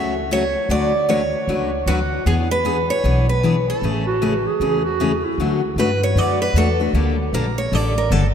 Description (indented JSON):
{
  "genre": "acoustic string swing (jazz manouche)",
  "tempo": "154 BPM",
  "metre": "4/4",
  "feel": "swing 62% on 8ths",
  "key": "A major",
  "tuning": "A4 = 441 Hz",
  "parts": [
    { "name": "picked steel-string acoustic guitar", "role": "melody", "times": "0.0-8.3 s", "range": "F#4 to E5", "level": "-22 LUFS", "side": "right 1 dB", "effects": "none" },
    { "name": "picked steel-string acoustic guitar", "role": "accompaniment", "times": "0.0-8.2 s", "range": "C#3 to B4", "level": "-22 LUFS", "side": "left 4 dB", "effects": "none" },
    { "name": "upright bass", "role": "bass", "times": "0.0-8.3 s", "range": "G1 to G2", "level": "-22 LUFS", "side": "equal", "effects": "none" },
    { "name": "mellow clarinet", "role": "second line", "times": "4.1-5.4 s", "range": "E4 to G#4", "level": "-24 LUFS", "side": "right 4 dB", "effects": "none" }
  ],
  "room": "wet cathedral reverb, RT60 4.9 s",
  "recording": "in a vast, echoing space",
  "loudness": "-17 LUFS",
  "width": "side -8 dB against mid",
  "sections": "0.0-5.4 A section; 5.4-8.3 B section",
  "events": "steel-string acoustic guitar solo 5.4-8.3",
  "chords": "0.0 F#m; 0.7 D6; 2.3 E7; 3.8 Amaj7; 5.4 D; 6.9 Gmadd9"
}